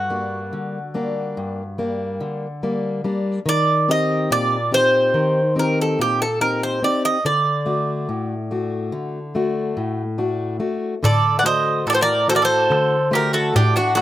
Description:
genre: greek folk, Greek bouzouki band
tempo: 143 BPM (eighths)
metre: 9/8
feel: straight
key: D phrygian dominant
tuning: A4 = 440 Hz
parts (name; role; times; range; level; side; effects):
- Greek bouzouki; melody; 0.0-14.0 s; F#4 to F#5; -19 LUFS; right 1 dB; none
- fingerpicked plugged-in steel-string acoustic guitar; accompaniment; 0.0-14.0 s; G2 to G4; -22 LUFS; left 2 dB; none
- mandolin; second line; 11.0-14.0 s; D4 to D5; -23 LUFS; right 3 dB; slapback echo
- darbuka; percussion; 11.0-14.0 s; none; -20 LUFS; equal; none
room: light reverb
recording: recorded outdoors, with no room sound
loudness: -18 LUFS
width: side -13 dB against mid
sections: 0.0-11.0 A section; 11.0-14.0 A section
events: none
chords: 0.0 Gm; 3.5 Eb6; 7.3 D

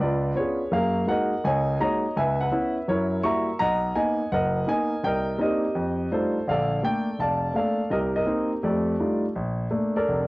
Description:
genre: solo jazz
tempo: 167 BPM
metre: 4/4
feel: swing 66% on 8ths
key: unclear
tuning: A4 = 440 Hz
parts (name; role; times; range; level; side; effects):
- warm grand piano; solo; 0.0-10.3 s; F1 to Db6; -22 LUFS; equal; none
room: light reverb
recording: worn, warbling old tape, cassette tape, warbly pitch drift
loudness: -22 LUFS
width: side -22 dB against mid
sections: 0.0-9.3 A section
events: none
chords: 0.0 Db7b9; 0.7 Gb69; 2.2 Dbm7; 2.9 Gb7b9; 3.6 Bmaj7; 5.0 Cm9; 5.8 F13; 6.5 Bbmaj7; 7.9 Cm7; 8.6 F13; 9.3 Bbmaj7

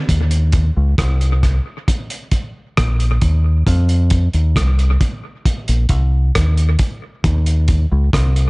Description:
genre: roots reggae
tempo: 67 BPM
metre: 4/4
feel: straight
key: unclear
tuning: A4 = 440 Hz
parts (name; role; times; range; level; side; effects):
- deep dub fingered electric bass; bass; 0.1-8.5 s; Bb1 to F2; -14 LUFS; equal; none
- cloth-damped thuddy drum kit; drums; 0.1-8.5 s; hi-hat, kick drum, rim click; -18 LUFS; equal; analog delay
room: little or no reverb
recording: echo-heavy mix, nothing above 10.4 kHz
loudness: -14 LUFS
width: side -28 dB against mid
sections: 0.0-8.5 A section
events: none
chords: none

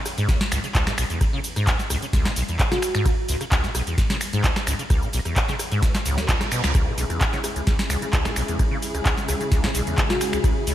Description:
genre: acid house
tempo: 130 BPM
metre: 4/4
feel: straight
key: C# minor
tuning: A4 = 439 Hz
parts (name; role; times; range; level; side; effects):
- booming analog drum machine; drums; 0.1-10.7 s; finger snaps, handclaps, hi-hat, ride cymbal, rim click, shaker, snare drum; -26 LUFS; equal; gated reverb
- liquid acid bass; riff; 0.2-10.7 s; B1 to C#3; -26 LUFS; equal; tube saturation, ensemble chorus, cassette tape, sidechain pumping, digital delay
- electronic kick drum; drums; 0.3-10.5 s; none; -23 LUFS; equal; none
- bell-like FM electric piano; melody; 2.7-3.1, 10.1-10.4 s; F#4; -27 LUFS; right 1 dB; chorus, digital delay
- reverse cymbal; sound effects; 6.0-6.7 s; none; -34 LUFS; right 6 dB; none
- warm studio string section; sustained chords; 6.7-10.7 s; C#3 to G#4; -29 LUFS; left 2 dB; sidechain pumping
room: light reverb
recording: bright 1980s-style digital production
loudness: -20 LUFS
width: side -12 dB against mid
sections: 0.0-10.7 A section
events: reverse cymbal 6.0-6.7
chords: 0.0 C#m

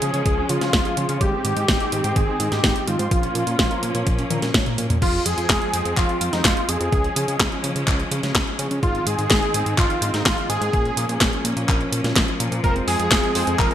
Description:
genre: italo disco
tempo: 126 BPM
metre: 4/4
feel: straight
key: F minor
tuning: A4 = 440 Hz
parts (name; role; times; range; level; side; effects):
- wide unison lead; melody; 0.0-13.7 s; Eb4 to Bb4; -24 LUFS; equal; cassette tape, ping-pong delay
- warm studio string section; sustained chords; 0.0-13.7 s; Eb3 to Db4; -28 LUFS; left 1 dB; none
- mellow electric guitar; arpeggios; 0.0-5.0, 12.6-13.7 s; Eb3 to Db5; -32 LUFS; right 3 dB; ping-pong delay
- fat analog bass; bass; 0.0-13.7 s; F1 to Db3; -26 LUFS; equal; none
- house drum kit; drums; 0.0-13.7 s; crash cymbal, handclaps, hi-hat, snare drum, toms; -22 LUFS; equal; none
- electronic kick drum; drums; 0.3-13.7 s; none; -23 LUFS; equal; none
- analog synth brass; stabs; 12.6-13.7 s; Ab3 to C5; -28 LUFS; left 1 dB; chorus
room: moderate plate reverb, RT60 1.9 s, digital ambience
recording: bright 1980s-style digital production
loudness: -18 LUFS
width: side -10 dB against mid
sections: 0.0-5.0 A section; 5.0-13.7 B section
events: drum fill 4.3-5.0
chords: 0.0 Db; 1.2 Ab; 3.1 Bbm; 5.0 Fm; 6.9 Db; 8.8 Ab; 10.7 Bbm; 12.6 Fm

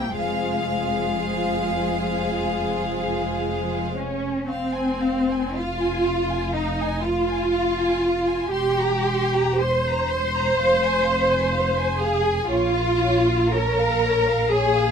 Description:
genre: classical, slow romantic movement for string orchestra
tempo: 54-64 BPM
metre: 4/4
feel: rubato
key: F minor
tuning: A4 = 440 Hz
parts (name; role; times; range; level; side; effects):
- warm chamber violin section; melody; 0.0-14.9 s; Db5 to C6; -30 LUFS; left 4 dB; none
- rich studio violin section; second line; 0.0-14.9 s; C4 to C5; -27 LUFS; left 1 dB; none
- rich studio viola section; accompaniment; 0.0-14.9 s; Ab3 to C5; -26 LUFS; right 2 dB; none
- rich symphonic double bass section; bass; 0.0-14.9 s; E1 to C2; -28 LUFS; right 1 dB; none
- warm chamber cello section; bass; 0.0-14.9 s; F2 to C5; -25 LUFS; left 1 dB; none
room: light reverb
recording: minimal, uncompressed stereo recording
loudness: -20 LUFS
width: side -7 dB against mid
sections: 0.0-4.5 A section; 4.5-14.9 A section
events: none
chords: 0.2 Fm; 8.5 C7/E; 10.6 Fm; 12.5 Bbm

